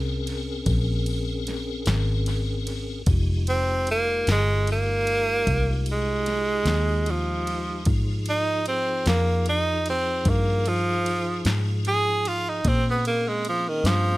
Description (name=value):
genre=slow blues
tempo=50 BPM (dotted quarters)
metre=12/8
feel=straight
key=F minor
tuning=A4 = 440 Hz
part: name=tonewheel organ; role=sustained chords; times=0.0-14.2 s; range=F3 to Bb4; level=-33 LUFS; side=left 2 dB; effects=slow rotary speaker, chorus vibrato
part: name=vintage muted fingered electric bass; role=bass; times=0.0-14.2 s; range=F1 to Bb2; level=-25 LUFS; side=equal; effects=none
part: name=punchy analog drum machine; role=drums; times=0.3-14.0 s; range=kick drum, ride cymbal, snare drum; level=-30 LUFS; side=equal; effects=none
part: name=bright tenor saxophone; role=melody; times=3.5-14.2 s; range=Eb3 to Ab4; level=-24 LUFS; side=right 1 dB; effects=none
room=digital ambience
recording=echo-heavy mix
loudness=-21 LUFS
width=side -18 dB against mid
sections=0.0-14.2 A section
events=tenor saxophone solo 0.0-14.2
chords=0.0 Bbm9; 3.1 Fm9; 12.7 Bbm9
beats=0.67 1.87 | 3.07 4.28 5.48 6.68 | 7.88 9.07 10.27 11.46 | 12.66 13.85